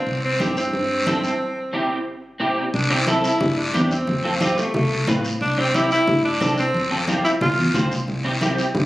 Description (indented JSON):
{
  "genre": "latin, cumbia",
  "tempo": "180 BPM",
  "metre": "4/4",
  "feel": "straight",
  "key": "C major",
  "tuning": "A4 = 441 Hz",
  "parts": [
    { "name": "clear tenor saxophone", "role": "melody", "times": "0.0-7.9 s", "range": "A3 to F4", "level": "-22 LUFS", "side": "equal", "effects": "none" },
    { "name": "fingered electric bass", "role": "bass", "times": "0.1-8.9 s", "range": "C2 to A2", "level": "-24 LUFS", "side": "equal", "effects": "none" },
    { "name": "congas", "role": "percussion", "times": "0.1-8.9 s", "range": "none", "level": "-27 LUFS", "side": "equal", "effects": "none" },
    { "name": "guiro", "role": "percussion", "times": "0.1-8.9 s", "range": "none", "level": "-29 LUFS", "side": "left 1 dB", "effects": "none" },
    { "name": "electric guitar at the edge of break-up", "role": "accompaniment", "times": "0.4-8.6 s", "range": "C4 to C5", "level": "-24 LUFS", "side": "right 1 dB", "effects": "ensemble chorus" }
  ],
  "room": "moderate large studio reverb, RT60 1.2 s",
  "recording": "recorded on a phone in the room, club reverb, compression, faint mains hum",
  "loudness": "-18 LUFS",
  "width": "side -16 dB against mid",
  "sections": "0.0-2.7 A section; 2.7-8.9 B section",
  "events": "break 1.4-2.7",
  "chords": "0.1 C; 4.1 F; 5.4 C; 6.7 F5; 8.1 C"
}